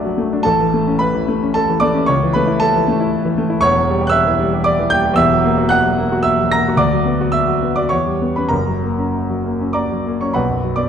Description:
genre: classical, romantic character piece for solo piano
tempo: 94-120 BPM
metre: 3/4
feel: rubato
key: B minor from 3.6 s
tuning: A4 = 440 Hz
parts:
  - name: clear concert grand piano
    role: solo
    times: 0.0-10.9 s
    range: E1 to A#6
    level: -14 LUFS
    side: equal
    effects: none
room: moderate scoring stage reverb, RT60 1.9 s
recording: dark, warm production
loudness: -14 LUFS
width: side -8 dB against mid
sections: 0.0-10.4 A section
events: none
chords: 0.5 A; 2.1 A/C#; 3.6 C#dim/E; 5.2 F#7/E; 6.8 Bm/D; 7.9 C#m7b5/E; 8.5 F#; 10.4 Bm

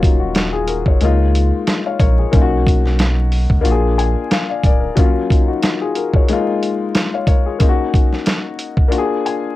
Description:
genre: hip hop, boom-bap hip-hop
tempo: 91 BPM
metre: 4/4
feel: swing 56% on 16ths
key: Db mixolydian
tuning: A4 = 440 Hz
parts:
  - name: dark concert grand piano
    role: accompaniment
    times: 0.0-9.6 s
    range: Gb3 to Ab5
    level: -18 LUFS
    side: left 5 dB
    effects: cassette tape, high-pass filter, low-pass filter
  - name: soft dub sub bass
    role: bass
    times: 0.0-4.9 s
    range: D1 to Db2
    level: -17 LUFS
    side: equal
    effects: none
  - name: dusty soul sampler-style drum kit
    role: drums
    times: 0.0-9.4 s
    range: hi-hat, kick drum, snare drum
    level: -15 LUFS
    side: equal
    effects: cassette tape
room: light reverb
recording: home recording on cassette, vinyl crackle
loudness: -13 LUFS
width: side -16 dB against mid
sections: 0.0-9.6 A section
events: none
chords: 0.0 Ebm7; 1.0 Db6; 2.3 Cbmaj9; 3.6 Bb7; 5.0 Gbmaj13; 6.3 Db69/Ab; 7.6 Gb69/Bb; 8.9 Bb7

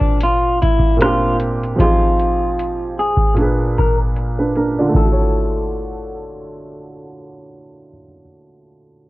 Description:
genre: lo-fi hip hop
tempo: 76 BPM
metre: 4/4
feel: swing 55% on 16ths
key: unclear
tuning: A4 = 440 Hz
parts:
  - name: electric guitar through a small old amp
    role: melody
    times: 0.0-7.3 s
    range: D4 to Bb4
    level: -20 LUFS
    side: left 1 dB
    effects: analog delay
  - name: felt-muted upright piano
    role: accompaniment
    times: 0.0-9.1 s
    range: Bb2 to D5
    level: -20 LUFS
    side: right 1 dB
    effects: cassette tape
  - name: booming analog drum machine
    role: drums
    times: 0.0-5.1 s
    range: hi-hat, kick drum, rim click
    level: -18 LUFS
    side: equal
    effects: none
room: light reverb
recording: worn, warbling old tape, cassette tape, warbly pitch drift, low-pass filter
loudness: -14 LUFS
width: side -18 dB against mid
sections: 0.0-4.9 A section; 4.9-8.1 B section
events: filter sweep 0.0-4.9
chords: 0.0 Bb6; 1.8 Fm7; 3.4 Bb7b9; 4.9 Dmaj9

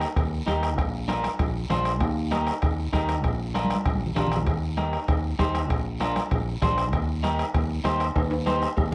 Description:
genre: latin, cumbia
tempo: 195 BPM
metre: 4/4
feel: straight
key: Eb major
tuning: A4 = 441 Hz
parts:
  - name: electric guitar at the edge of break-up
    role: accompaniment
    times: 0.0-8.7 s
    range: D4 to C5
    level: -31 LUFS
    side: equal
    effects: none
  - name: fingered electric bass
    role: bass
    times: 0.0-8.9 s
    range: Bb1 to Eb2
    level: -30 LUFS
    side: equal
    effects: none
  - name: bombo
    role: percussion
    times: 0.0-8.9 s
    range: none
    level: -30 LUFS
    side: equal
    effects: none
  - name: guiro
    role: percussion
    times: 0.0-8.9 s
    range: none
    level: -48 LUFS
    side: equal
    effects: none
  - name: timbales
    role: percussion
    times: 0.0-8.9 s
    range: none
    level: -38 LUFS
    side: equal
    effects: none
  - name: congas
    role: percussion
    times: 0.5-8.9 s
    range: none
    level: -34 LUFS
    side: equal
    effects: none
room: moderate studio reverb, RT60 0.8 s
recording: worn, warbling old tape, cassette tape, warbly pitch drift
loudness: -25 LUFS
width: mono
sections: 0.0-8.9 A section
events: drum fill 3.5-4.5, 8.2-8.9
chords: 0.0 Eb; 0.8 Bb; 2.0 Eb; 3.2 Bb; 4.5 Eb; 5.7 Bb; 6.9 Eb

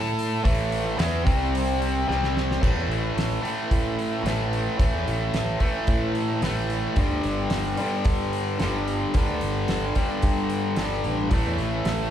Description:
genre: classic rock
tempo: 110 BPM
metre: 4/4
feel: straight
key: unclear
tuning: A4 = 444 Hz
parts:
  - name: overdriven electric guitar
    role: riff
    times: 0.0-12.1 s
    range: G2 to A4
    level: -25 LUFS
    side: equal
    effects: none
  - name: picked electric bass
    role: bass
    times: 0.0-12.1 s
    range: G1 to A2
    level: -29 LUFS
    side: equal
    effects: none
  - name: damped 70s drum kit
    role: drums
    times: 0.2-12.0 s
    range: crash cymbal, hi-hat, kick drum, snare drum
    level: -26 LUFS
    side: equal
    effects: none
room: moderate large studio reverb, RT60 0.8 s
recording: band playing live in one room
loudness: -22 LUFS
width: side -10 dB against mid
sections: 0.0-2.6 A section; 2.6-12.1 B section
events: drum fill 2.1-2.6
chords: 0.0 A5; 1.3 C5; 2.6 A5; 7.0 G5; 11.3 A5

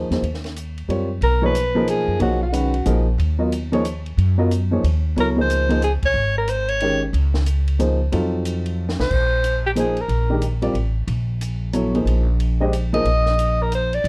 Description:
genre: modal jazz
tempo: 182 BPM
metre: 3/4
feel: swing 63% on 8ths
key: B lydian, Bb mixolydian from 9.1 s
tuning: A4 = 439 Hz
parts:
  - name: warm baby grand piano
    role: accompaniment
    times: 0.0-13.0 s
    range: D#3 to D#5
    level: -24 LUFS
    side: equal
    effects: none
  - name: upright bass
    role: bass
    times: 0.0-14.1 s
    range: G#1 to Gb2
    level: -23 LUFS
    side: equal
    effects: none
  - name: compact cocktail drum kit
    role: drums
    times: 0.1-14.1 s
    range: crash cymbal, hi-hat, kick drum, ride cymbal, snare drum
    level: -36 LUFS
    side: equal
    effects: none
  - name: breathy alto saxophone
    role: melody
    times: 1.2-3.0, 5.2-10.4, 12.9-14.1 s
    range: F#4 to Eb5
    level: -24 LUFS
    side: equal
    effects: none
room: light reverb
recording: dark, warm production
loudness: -20 LUFS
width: mono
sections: 0.0-1.2 A section; 1.2-9.1 B section; 9.1-14.1 C section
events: band accent 6.0; drum fill 8.8-9.1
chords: 0.0 Eb7sus2; 1.2 Bmaj9; 5.2 C#maj9; 8.1 F7b9; 9.1 Bb9sus4

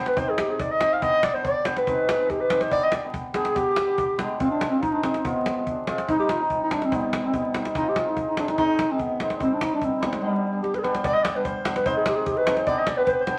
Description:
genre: klezmer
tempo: 144 BPM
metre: 2/4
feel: straight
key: G phrygian dominant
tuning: A4 = 445 Hz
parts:
  - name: breathy clarinet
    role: melody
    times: 0.0-13.4 s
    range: G3 to F5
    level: -26 LUFS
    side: equal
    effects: none
  - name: hammered dulcimer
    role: accompaniment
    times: 0.0-13.4 s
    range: G3 to Ab4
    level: -30 LUFS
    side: equal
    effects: none
  - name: cajon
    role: drums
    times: 0.1-13.4 s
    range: none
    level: -34 LUFS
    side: equal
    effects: none
  - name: mellow accordion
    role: second line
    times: 1.0-10.8 s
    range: G3 to Eb5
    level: -34 LUFS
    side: equal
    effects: none
room: wet studio reverb, RT60 0.8 s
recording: vinyl crackle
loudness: -24 LUFS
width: mono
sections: 0.0-4.4 A section; 4.4-11.0 B section; 11.0-13.4 A section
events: speeding up 0.0-13.4; drum fill 10.6-11.0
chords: 0.2 Cm; 1.0 G; 1.9 Ab; 2.7 G; 4.4 Fm; 6.1 Cm; 7.7 Ab; 9.4 Cm; 10.2 G; 11.9 Ab; 12.7 G

